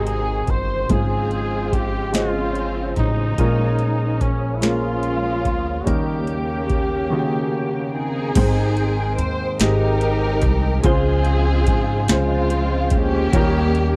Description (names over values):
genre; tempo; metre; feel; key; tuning
slow gospel; 48 BPM (dotted quarters); 6/8; straight; Ab major; A4 = 440 Hz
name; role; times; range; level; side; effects
dark studio string section; melody; 0.0-14.0 s; Ab3 to C5; -27 LUFS; equal; none
growling trumpet; melody; 0.0-7.9 s; Db4 to C5; -30 LUFS; equal; none
warm grand piano; accompaniment; 0.0-14.0 s; Ab2 to G5; -27 LUFS; equal; none
percussive tonewheel organ; sustained chords; 0.0-14.0 s; Db3 to G5; -31 LUFS; equal; fast rotary speaker, overdrive, chorus vibrato
upright bass; bass; 0.0-14.0 s; G1 to Ab2; -25 LUFS; equal; none
booming analog drum machine; drums; 0.1-13.9 s; crash cymbal, hi-hat, kick drum, snare drum; -25 LUFS; equal; none
room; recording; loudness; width
small room reverb; dry, close 1970s-style studio recording; -20 LUFS; mono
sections
0.0-8.4 A section; 8.4-14.0 B section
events
none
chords
0.0 Ab7; 0.9 Dbmaj7/Ab; 3.4 Bbm7; 5.9 Eb7; 8.4 Abmaj7; 10.8 Dbmaj7; 13.3 Eb7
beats
| 0.90 2.14 | 3.38 4.63 | 5.87 7.12 | 8.36 9.60 | 10.85 12.09 | 13.33